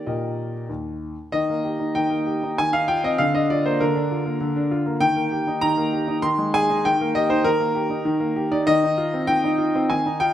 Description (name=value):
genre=classical-period piano sonatina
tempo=98 BPM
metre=3/4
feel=rubato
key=Eb major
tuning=A4 = 439 Hz
part: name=clear grand piano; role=solo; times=0.0-10.3 s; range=Eb2 to C6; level=-19 LUFS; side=equal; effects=none
room=moderate recital hall reverb, RT60 1.4 s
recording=close, detailed microphones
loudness=-19 LUFS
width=side -11 dB against mid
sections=0.0-1.3 A section; 1.3-10.3 A section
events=none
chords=0.0 Eb; 2.6 F5/Eb; 3.2 Bb/D; 5.0 Eb; 6.2 Ab/Eb; 6.8 Eb; 8.7 F5/Eb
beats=0.05 0.69 | 1.32 1.95 2.57 | 3.19 3.80 4.42 | 5.03 5.64 6.24 | 6.85 7.46 8.06 | 8.67 9.28 9.89